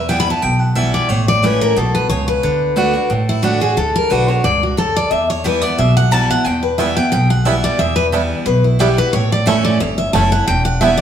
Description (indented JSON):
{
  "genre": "bluegrass",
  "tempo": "179 BPM",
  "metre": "4/4",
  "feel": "swing 53% on 8ths",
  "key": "E dorian",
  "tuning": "A4 = 439 Hz",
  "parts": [
    { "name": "picked steel-string acoustic guitar", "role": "melody", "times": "0.0-11.0 s", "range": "E4 to B5", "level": "-16 LUFS", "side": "left 1 dB", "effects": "none" },
    { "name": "picked steel-string acoustic guitar", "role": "accompaniment", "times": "0.0-11.0 s", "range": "E2 to F#4", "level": "-18 LUFS", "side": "right 1 dB", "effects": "none" },
    { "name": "upright bass", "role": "bass", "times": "0.0-11.0 s", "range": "E1 to E2", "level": "-19 LUFS", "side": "equal", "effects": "none" },
    { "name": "bluegrass banjo", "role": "melody", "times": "6.8-10.9 s", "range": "G3 to E4", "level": "-22 LUFS", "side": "right 5 dB", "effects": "none" }
  ],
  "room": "wet stone room reverb, RT60 1.2 s",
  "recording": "band playing live in one room",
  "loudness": "-13 LUFS",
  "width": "side -9 dB against mid",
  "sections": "0.0-11.0 A section",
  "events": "steel-string acoustic guitar solo 0.0-11.0",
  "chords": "0.0 Em; 1.1 A; 2.4 D; 5.1 Em; 9.1 A; 10.5 Em",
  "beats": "0.10 0.43 0.77 | 1.10 1.44 1.77 2.10 | 2.44 2.77 3.11 3.44 | 3.78 4.11 4.45 4.78 | 5.12 5.45 5.79 6.12 | 6.46 6.79 7.12 7.46 | 7.79 8.13 8.46 8.80 | 9.13 9.47 9.80 10.14 | 10.47 10.80"
}